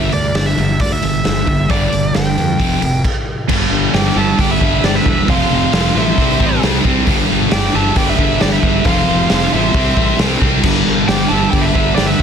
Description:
hard rock; 134 BPM; 4/4; straight; A4 = 436 Hz
biting lead guitar; melody; 0.0-12.2 s; D5 to A5; -20 LUFS; right 3 dB; overdrive, digital delay
sludgy distorted guitar; riff; 0.0-12.2 s; F2 to C4; -20 LUFS; left 12 dB; overdrive
sludgy distorted guitar; riff; 0.0-12.2 s; F2 to C4; -21 LUFS; right 10 dB; overdrive
fuzz fingered electric bass; bass; 0.0-12.2 s; E1 to F2; -20 LUFS; equal; overdrive
raw garage drum kit; drums; 0.1-12.2 s; crash cymbal, hi-hat, kick drum, snare drum; -17 LUFS; equal
distorted electric guitar; riff; 3.5-12.2 s; F2 to C4; -19 LUFS; equal; overdrive
octave-fuzz lead guitar; second line; 3.9-12.2 s; G4 to E5; -24 LUFS; right 2 dB; distortion
light reverb, small room reverb; dense, heavily limited modern master; -12 LUFS; side -7 dB against mid
0.0-3.5 A section; 3.5-12.2 B section
stop 3.0-3.5
0.0 G5; 2.6 F5; 3.0 N.C.; 3.5 G5; 5.3 F; 6.2 C; 7.1 G5; 8.9 F; 9.8 C; 10.6 G5

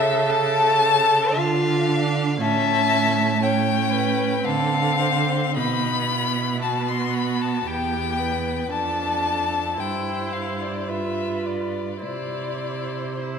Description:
classical, slow romantic movement for string quartet; 56 BPM; 3/4; uneven beats, rubato; C major; A4 = 440 Hz
rich violin; melody; 0.0-13.4 s; C5 to C6; -24 LUFS; left 7 dB
warm violin; second line; 0.0-13.4 s; Eb4 to F5; -27 LUFS; equal
clear viola; accompaniment; 0.0-13.4 s; B3 to A4; -27 LUFS; right 3 dB
rich cello; bass; 0.0-13.4 s; E2 to D3; -26 LUFS; right 6 dB
wet concert hall reverb, RT60 2.3 s; -20 LUFS; side -6 dB against mid
0.0-13.4 A section
0.0 A/C#; 1.4 Dm; 2.4 A7; 4.4 Dm7; 5.6 B5; 7.7 Em; 8.7 Dm/F; 9.8 C/G; 10.9 G7; 12.0 C

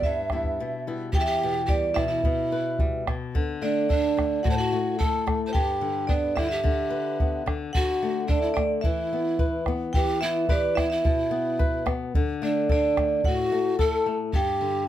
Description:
andean folk, Andean ensemble; 109 BPM; 2/4; straight; E minor; A4 = 441 Hz
vibraphone with medium hard mallets; melody; 0.0-14.9 s; D5 to A5; -27 LUFS; right 2 dB
breathy polished pan flute; second line; 0.0-14.8 s; D4 to E5; -30 LUFS; right 2 dB
flamenco guitar; accompaniment; 0.0-14.9 s; E2 to B4; -29 LUFS; left 6 dB
bombo; percussion; 0.0-14.5 s; -26 LUFS; equal
light reverb; -22 LUFS; side -12 dB against mid
0.0-1.1 A section; 1.1-9.9 B section; 9.9-14.9 B section
break 0.6-1.1
0.0 Em; 3.3 D5; 5.5 G; 7.7 D; 8.8 E5; 12.1 D; 14.3 G5

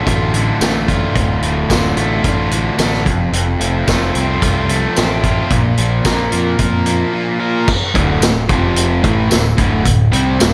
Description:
classic rock; 110 BPM; 4/4; straight; D minor; A4 = 440 Hz
cranked stack guitar; riff; 0.0-10.5 s; D2 to Bb4; -21 LUFS; equal; overdrive, slapback echo
crunchy overdriven guitar; riff; 0.0-10.5 s; D2 to Bb4; -22 LUFS; equal; slapback echo
growling fingered electric bass; bass; 0.1-10.5 s; D1 to F2; -22 LUFS; equal; overdrive
vintage drum kit; drums; 0.1-10.5 s; crash cymbal, hi-hat, kick drum, snare drum, tambourine; -19 LUFS; equal
moderate scoring stage reverb, RT60 1.7 s, studio reverb; big arena sound; -15 LUFS; mono
0.0-7.7 A section; 7.7-10.5 B section
0.0 Dm; 3.1 F; 5.5 Bb5; 7.7 D5; 8.5 F5; 9.0 D5

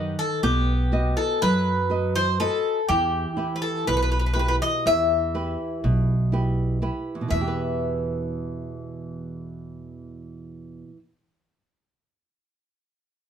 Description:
greek folk, Greek bouzouki band; 122 BPM (eighths); 9/8; straight; E harmonic minor; A4 = 440 Hz
Greek bouzouki; melody; 0.0-11.0 s; G4 to E5; -24 LUFS; left 2 dB
nylon-string guitar; accompaniment; 0.0-11.2 s; E2 to F#5; -28 LUFS; right 3 dB
upright bass; bass; 0.0-11.0 s; B1 to F#2; -26 LUFS; equal
light reverb; -21 LUFS; side -8 dB against mid
0.0-7.3 A section; 7.3-11.7 B section
0.0 B; 2.9 Em

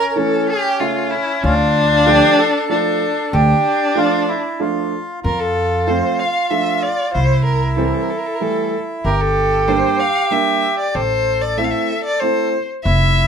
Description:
klezmer; 94 BPM; 3/4; straight; D harmonic minor, F major from 5.2 s; A4 = 443 Hz
rich violin; melody; 0.0-13.3 s; D4 to F5; -18 LUFS; left 2 dB
accordion; second line; 0.0-13.3 s; C#4 to A4; -20 LUFS; right 1 dB
warm upright piano; accompaniment; 0.2-12.5 s; C#3 to E5; -21 LUFS; right 4 dB
upright bass; bass; 1.4-13.3 s; F1 to F2; -18 LUFS; equal
moderate small room reverb, RT60 0.5 s; minimal, uncompressed stereo recording; -14 LUFS; side -7 dB against mid
0.0-5.2 A section; 5.2-13.3 B section
0.0 A; 1.4 Dm; 5.2 F; 7.1 C; 9.0 Gm; 11.0 Am

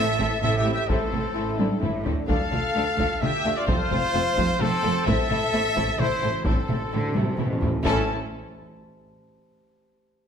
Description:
cinematic, epic orchestral film score; 129 BPM; 3/4; straight; A minor; A4 = 439 Hz
warm symphonic violin section; melody; 0.0-8.1 s; A4 to A5; -30 LUFS; left 4 dB
bright flute section; second line; 0.0-8.1 s; C4 to A5; -30 LUFS; left 5 dB
dark symphonic violin section; second line; 0.0-8.1 s; C4 to A4; -34 LUFS; left 5 dB
warm symphonic viola section; accompaniment; 0.0-8.1 s; A3 to C#4; -32 LUFS; right 1 dB
warm trumpet; stabs; 0.0-8.0 s; A4 to F5; -28 LUFS; right 2 dB
rich symphonic double bass section; bass; 0.0-8.1 s; F1 to D2; -32 LUFS; right 4 dB
warm symphonic cello section; bass; 0.0-8.1 s; D2 to D3; -31 LUFS; right 4 dB
timpani; percussion; 0.0-0.2, 5.1-8.1 s; A2; -32 LUFS; equal
taiko ensemble; drums; 0.2-8.7 s; -28 LUFS; equal
warm French horn section; sustained chords; 0.9-8.0 s; C4 to A4; -33 LUFS; left 4 dB
wet recital hall reverb, RT60 1.4 s; -21 LUFS; side -7 dB against mid
0.0-7.9 A section; 7.9-9.2 B section
drum fill 1.6-2.3, 7.2-7.9; timpani fill 5.1-7.9
0.0 Am; 2.3 Dm; 3.7 F; 5.1 Am; 7.9 A

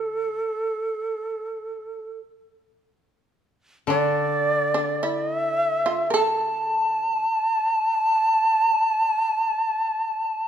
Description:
japanese traditional, Japanese chamber music; free time; A4 = 440 Hz
breathy bright long shakuhachi; melody; 0.0-10.5 s; A4 to A5; -22 LUFS; equal
shamisen; second line; 0.0-10.5 s; A3 to Bb4; -27 LUFS; right 4 dB
koto; accompaniment; 0.0-7.3 s; D3; -28 LUFS; left 7 dB
moderate recital hall reverb, RT60 1.6 s; minimal, uncompressed stereo recording; -21 LUFS; side -9 dB against mid
0.0-10.5 A section

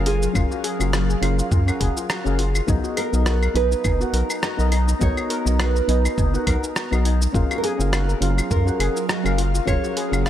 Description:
sunset chillout; 103 BPM; 4/4; swing 56% on 16ths; F# major; A4 = 439 Hz
soft electric-piano-like synth keys; accompaniment; 0.0-10.3 s; F#3 to F#5; -28 LUFS; moving between left 5 dB and right 2 dB; chorus, auto-pan, tape echo
ethereal airy pad; sustained chords; 0.0-10.3 s; F#3 to A#5; -30 LUFS; equal; ensemble chorus, built-in reverb, phaser
round analog bass; bass; 0.0-10.3 s; F#1 to F#2; -20 LUFS; equal
nylon-string guitar; melody; 0.1-10.3 s; G#4 to E#5; -27 LUFS; right 6 dB; tape echo
steel pan; arpeggios; 0.1-10.3 s; D#4 to A#4; -30 LUFS; left 6 dB; tape echo
dusty soul sampler-style drum kit; drums; 0.1-10.3 s; claves, hi-hat, rim click, shaker; -27 LUFS; left 1 dB
electronic kick drum; drums; 0.4-9.8 s; -23 LUFS; equal
light reverb; -18 LUFS; side -11 dB against mid
0.0-10.3 A section
0.0 F#maj9; 2.7 Bmaj7; 7.3 F#maj9

